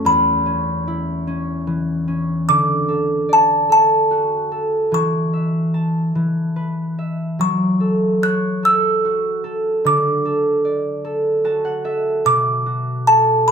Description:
children's music, lullaby; 49 BPM (dotted quarters); 6/8; rubato; A4 = 440 Hz
music box; melody; 0.0-13.5 s; A5 to F#6; -16 LUFS; equal
concert harp; accompaniment; 0.0-13.5 s; E2 to A5; -19 LUFS; equal
light reverb; -16 LUFS; side -6 dB against mid
0.0-13.5 A section
harp fill 11.0-12.2
0.1 C#m7/E; 2.5 D; 4.9 A/E; 6.1 E5; 7.4 F#m; 9.8 D; 12.2 Bm7
| 0.05 1.27 | 2.49 3.70 | 4.92 6.15 | 7.38 8.62 | 9.84 11.04 | 12.25 13.47

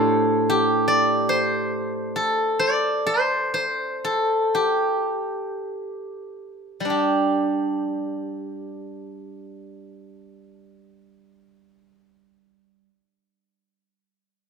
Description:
chinese traditional, Chinese solo plucked strings; 48-75 BPM; 4/4; rubato; G shang mode; A4 = 441 Hz
steel-string zither; solo; 0.0-12.9 s; A2 to C6; -21 LUFS; equal
light reverb; minimal, uncompressed stereo recording; -20 LUFS; side -6 dB against mid
0.0-6.9 A section; 6.9-11.8 B section
slowing down 0.0-6.9
0.07 0.87 1.71 | 2.60 3.54 4.55 5.68 | 6.91 8.17 9.39 10.61

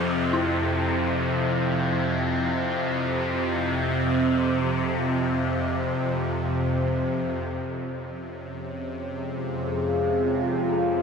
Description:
dark ambient drone; free time; A4 = 439 Hz
bowed-like drone; drone; 0.0-11.0 s; F2 to C3; -24 LUFS; equal; built-in reverb, phaser
dark detuned synth bell; arpeggios; 0.3-7.5 s; E4; -34 LUFS; left 1 dB; chorus, ping-pong delay
deep dark ambient pad; sustained chords; 8.7-11.0 s; F4 to F5; -26 LUFS; left 2 dB; chorus, built-in reverb
wet huge ambient reverb, RT60 9.1 s; -23 LUFS; side -6 dB against mid
0.0-7.5 A section; 7.5-11.0 B section
0.0 Cadd11/F; 7.5 Db
free time

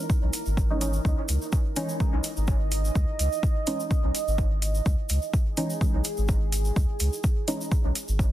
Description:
dub techno; 126 BPM; 4/4; swing 54% on 16ths; C# dorian; A4 = 440 Hz
deep dark ambient pad; sustained chords; 0.0-8.3 s; D#4 to D#5; -34 LUFS; right 3 dB; chorus, built-in reverb, sidechain pumping
electronic kick drum; drums; 0.1-8.3 s; -24 LUFS; equal; overdrive
tube shaker; percussion; 0.1-8.3 s; -37 LUFS; equal
soft dub sub bass; bass; 0.2-8.3 s; G#1 to C#2; -25 LUFS; equal; sidechain pumping
electronic hi-hat; drums; 0.3-8.1 s; -32 LUFS; right 1 dB; overdrive
deep mellow chord stab; stabs; 0.7-7.6 s; E3 to D#4; -32 LUFS; right 1 dB; chorus, phaser, sidechain pumping, dub echo
light reverb, digital ambience; dense, heavily limited modern master; -23 LUFS; side -14 dB against mid
0.0-8.3 A section
filter sweep on synth stab 0.0-8.3
0.0 C#madd9
0.10 0.57 | 1.05 1.53 2.00 2.48 | 2.95 3.43 3.91 4.38 | 4.86 5.33 5.81 6.29 | 6.76 7.24 7.72 8.19

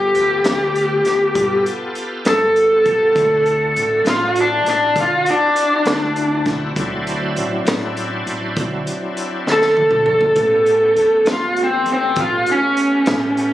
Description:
slow blues; 67 BPM (dotted quarters); 12/8; straight; D mixolydian; A4 = 442 Hz
overdriven slide guitar; melody; 0.0-13.5 s; C4 to A4; -14 LUFS; equal
bright tonewheel organ; sustained chords; 0.0-13.5 s; F#3 to A4; -25 LUFS; equal; slow rotary speaker, overdrive, chorus vibrato
upright bass; bass; 0.0-13.5 s; G1 to D3; -29 LUFS; equal
crunchy breakbeat drum kit; drums; 0.1-13.5 s; hi-hat, kick drum, snare drum, toms; -24 LUFS; equal
light reverb; recorded on a phone in the room, club reverb; -14 LUFS; side -13 dB against mid
0.0-13.5 A section
drum fill 9.5-10.4
0.0 G9; 3.2 D9; 10.4 A9
0.46 1.36 2.26 | 3.16 4.07 4.97 5.87 | 6.77 7.67 8.57 9.47 | 10.37 11.27 12.17 13.07

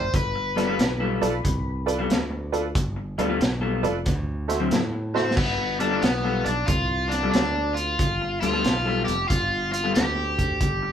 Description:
electric blues shuffle; 92 BPM; 4/4; swing 66% on 8ths; G mixolydian; A4 = 438 Hz
crunchy overdriven guitar; melody; 0.0-10.9 s; B3 to C5; -26 LUFS; left 1 dB
honky-tonk upright piano; accompaniment; 0.0-5.3 s; F4 to E5; -26 LUFS; right 3 dB
modern bright fingered electric bass; bass; 0.0-10.9 s; F1 to A2; -30 LUFS; right 1 dB
crunchy breakbeat drum kit; drums; 0.1-10.8 s; crash cymbal, hi-hat, kick drum, snare drum; -26 LUFS; equal
electric guitar through a small old amp; riff; 0.4-10.9 s; D3 to A4; -27 LUFS; left 4 dB
moderate studio reverb, RT60 0.6 s; band playing live in one room; -21 LUFS; side -9 dB against mid
0.0-5.4 A section; 5.4-10.9 A section
drum fill 5.0-5.4
0.1 G9; 4.1 D9; 5.4 G9
| 0.13 0.79 1.44 2.10 | 2.75 3.41 4.07 4.72 | 5.38 6.03 6.68 7.34 | 7.99 8.65 9.30 9.95 | 10.61

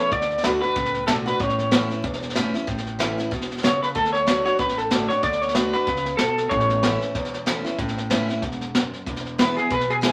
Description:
rockabilly; 188 BPM; 4/4; swing 58% on 8ths; A major; A4 = 444 Hz
electric guitar through a small old amp; melody; 0.0-10.1 s; G#4 to D5; -25 LUFS; equal; harmonic tremolo
picked steel-string acoustic guitar; accompaniment; 0.0-10.1 s; E2 to F#4; -30 LUFS; equal
upright bass; bass; 0.1-10.1 s; E1 to D2; -35 LUFS; equal
vintage brush drum kit; drums; 0.1-10.1 s; hi-hat, kick drum, snare drum; -27 LUFS; equal
wet small room reverb, RT60 0.5 s; vinyl crackle; -23 LUFS; mono
0.0-10.1 A section
0.1 D; 1.4 A; 4.0 D; 6.5 A; 9.1 E
| 0.11 0.43 0.75 1.07 | 1.39 1.72 2.04 2.35 | 2.67 2.99 3.31 3.63 | 3.95 4.27 4.59 4.91 | 5.23 5.55 5.87 6.19 | 6.51 6.83 7.15 7.47 | 7.79 8.11 8.43 8.75 | 9.07 9.39 9.71 10.03

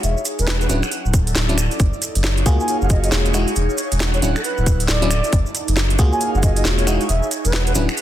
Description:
UK garage, two-step garage; 136 BPM; 4/4; swing 62% on 16ths; F# major; A4 = 440 Hz
baroque flute; melody; 0.0-7.8 s; A4 to G#5; -26 LUFS; right 1 dB; ping-pong delay
saturated sub bass; bass; 0.0-7.9 s; D1 to C#2; -19 LUFS; equal; tube saturation
garage drum kit; drums; 0.0-8.0 s; finger snaps, hi-hat, snare drum; -23 LUFS; right 1 dB
maracas; percussion; 0.0-8.0 s; -30 LUFS; right 3 dB
airy breathy pad; texture; 0.0-8.0 s; D#4 to F#5; -27 LUFS; equal; chorus, phaser, sidechain pumping
FM electric piano; stabs; 0.7-7.9 s; F#3 to G#4; -24 LUFS; equal; chorus, ping-pong delay
electronic kick drum; drums; 1.1-6.5 s; -19 LUFS; equal
little or no reverb; dense, heavily limited modern master; -16 LUFS; side -12 dB against mid
0.0-8.0 A section
0.0 Emaj9; 0.7 Dmaj9; 1.8 F#maj9; 3.3 Emaj9; 4.2 Dmaj9; 5.3 F#maj9; 6.9 Emaj9
| 0.03 0.47 0.92 1.36 | 1.80 2.24 2.68 3.12 | 3.56 4.00 4.45 4.89 | 5.33 5.77 6.21 6.65 | 7.09 7.53 7.97

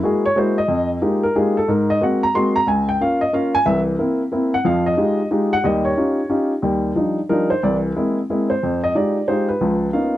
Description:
jazz; 182 BPM; 3/4; swing 64% on 8ths; Eb major from 6.6 s; A4 = 440 Hz
warm upright piano; solo; 0.0-10.2 s; C2 to C6; -16 LUFS; equal
light reverb; dry, close 1970s-style studio recording; -16 LUFS; side -14 dB against mid
0.0-6.6 A section; 6.6-10.2 B section
0.0 Gb9; 0.7 Fm11; 1.7 Ab9; 2.7 Db6; 3.7 C7; 4.6 Fm9; 5.6 Eb9; 6.6 Ebmaj9; 7.6 C7b13; 8.6 Fm9; 9.6 Db13
0.03 0.36 | 0.69 1.02 1.35 | 1.68 2.01 2.34 | 2.67 3.00 3.33 | 3.65 3.98 4.31 | 4.64 4.97 5.30 | 5.63 5.96 6.29 | 6.62 6.95 7.28 | 7.61 7.94 8.27 | 8.60 8.94 9.27 | 9.60 9.93

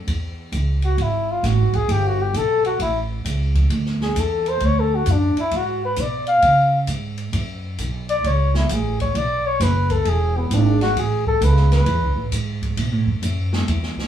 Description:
jazz, small-group swing and bop; 132 BPM; 4/4; swing 66% on 8ths; A major; A4 = 440 Hz
upright bass; bass; 0.0-14.0 s; E1 to C#3; -20 LUFS; right 1 dB
open jazz drum kit; drums; 0.1-14.1 s; hi-hat, kick drum, ride cymbal, snare drum; -29 LUFS; equal
mellow flugelhorn; melody; 0.8-12.3 s; B3 to F5; -20 LUFS; left 2 dB
wet studio ambience, RT60 0.5 s; band playing live in one room, small room ambience; -17 LUFS; side -10 dB against mid
0.1-14.1 A section
flugelhorn solo 0.1-14.1
0.1 Amaj7 (rootless); 1.9 Gmaj9; 2.8 A; 3.7 D; 5.5 G#m7b5; 6.4 C#; 7.3 F#m; 9.1 B5; 10.1 E; 11.0 Amaj7; 12.8 B5
| 0.07 0.53 0.98 1.44 | 1.89 2.34 2.80 3.25 | 3.70 4.16 4.61 5.07 | 5.52 5.97 6.42 6.88 | 7.33 7.79 8.24 8.69 | 9.14 9.60 10.05 10.50 | 10.96 11.41 11.86 12.31 | 12.77 13.22 13.67

